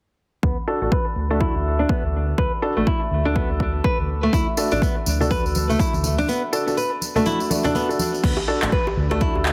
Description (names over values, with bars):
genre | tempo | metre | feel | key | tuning
afro house | 123 BPM | 4/4 | swing 59% on 16ths | unclear | A4 = 441 Hz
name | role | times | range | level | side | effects
nylon-string guitar | arpeggios | 0.4-9.3 s | A3 to B4 | -27 LUFS | equal | sidechain pumping, low-pass filter, delay
dark detuned saw bass | bass | 0.4-9.5 s | A1 to D2 | -26 LUFS | equal | tube saturation, sidechain pumping
electronic kick drum | drums | 0.4-9.3 s | none | -25 LUFS | equal | overdrive
felt-muted upright piano | stabs | 0.7-9.5 s | D4 to A4 | -28 LUFS | equal | sidechain pumping, low-pass filter, delay
congas | percussion | 4.3-8.1 s | none | -31 LUFS | equal | none
tambourine | percussion | 4.3-8.2 s | none | -33 LUFS | equal | none
deep house drum kit | drums | 8.2-9.5 s | crash cymbal, handclaps | -28 LUFS | equal | overdrive
djembe | percussion | 8.4-9.4 s | none | -31 LUFS | equal | none
room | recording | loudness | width
light reverb, small room reverb | heavily compressed radio sound, multiband compression | -21 LUFS | mono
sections
0.4-8.2 A section; 8.2-9.5 B section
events
filter sweep on nylon-string guitar 0.4-8.2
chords
0.4 D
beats
| 0.43 0.92 1.41 1.89 | 2.38 2.87 3.36 3.85 | 4.33 4.82 5.31 5.80 | 6.28 6.77 7.26 7.75 | 8.23 8.72 9.21